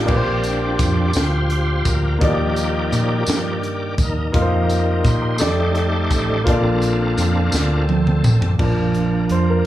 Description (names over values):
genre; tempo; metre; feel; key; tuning
slow gospel; 56 BPM (dotted quarters); 6/8; straight; Bb major; A4 = 440 Hz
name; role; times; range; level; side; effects
clear concert grand piano; accompaniment; 0.0-9.7 s; Bb2 to D5; -22 LUFS; left 1 dB; none
bright tonewheel organ; sustained chords; 0.0-9.7 s; F3 to D5; -23 LUFS; right 1 dB; fast rotary speaker, overdrive, chorus vibrato
woody fretless electric bass; bass; 0.0-9.6 s; A1 to Bb2; -20 LUFS; equal; none
crisp fusion drum kit; drums; 0.1-9.5 s; crash cymbal, hi-hat, kick drum, snare drum, toms; -21 LUFS; right 1 dB; none
tambourine; percussion; 0.4-8.6 s; none; -30 LUFS; equal; none
room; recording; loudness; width
little or no reverb; small room reverb; -16 LUFS; side -13 dB against mid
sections
0.0-8.6 A section; 8.6-9.7 B section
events
tonewheel organ solo 0.0-8.6; drum fill 7.5-8.6; grand piano solo 8.6-9.7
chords
0.1 Bb69; 2.2 Ebmaj7; 4.3 F7sus4; 5.4 F13; 6.5 Bbmaj7; 8.6 Bb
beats
| 0.09 1.16 | 2.22 3.28 | 4.34 5.41 | 6.47 7.53 | 8.60 9.66